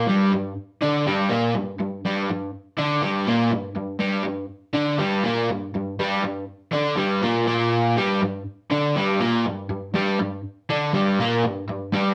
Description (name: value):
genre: rock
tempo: 121 BPM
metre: 4/4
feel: straight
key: G minor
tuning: A4 = 440 Hz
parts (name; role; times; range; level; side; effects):
- overdriven semi-hollow guitar; solo; 0.0-12.1 s; G2 to D4; -23 LUFS; equal; none
room: moderate studio reverb, RT60 0.6 s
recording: band playing live in one room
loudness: -23 LUFS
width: mono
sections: 0.0-12.1 A section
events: none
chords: 0.0 Gm